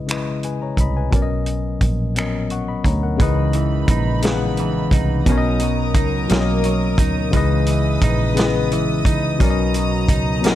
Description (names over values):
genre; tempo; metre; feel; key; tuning
slow six-eight R&B; 58 BPM (dotted quarters); 6/8; straight; C# dorian; A4 = 439 Hz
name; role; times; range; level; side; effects
tine electric piano; accompaniment; 0.0-10.6 s; B2 to C#6; -22 LUFS; left 5 dB; none
vintage muted fingered electric bass; bass; 0.0-10.6 s; A#1 to D2; -21 LUFS; right 1 dB; none
warm soul drum kit; drums; 0.1-10.6 s; finger snaps, hi-hat, kick drum, snare drum; -20 LUFS; right 1 dB; none
semi-hollow electric guitar; second line; 3.2-10.6 s; B2 to D#4; -25 LUFS; right 8 dB; none
warm studio string section; sustained chords; 3.2-10.6 s; D#4 to D#6; -28 LUFS; left 2 dB; none
room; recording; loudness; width
studio ambience; none; -16 LUFS; side -13 dB against mid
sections
0.0-3.2 A section; 3.2-10.6 B section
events
tine electric piano fill 2.2-3.2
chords
0.0 C#m9; 1.1 Bmaj7; 3.2 C#m9; 5.3 Bmaj7; 7.3 C#m9; 9.4 Bmaj7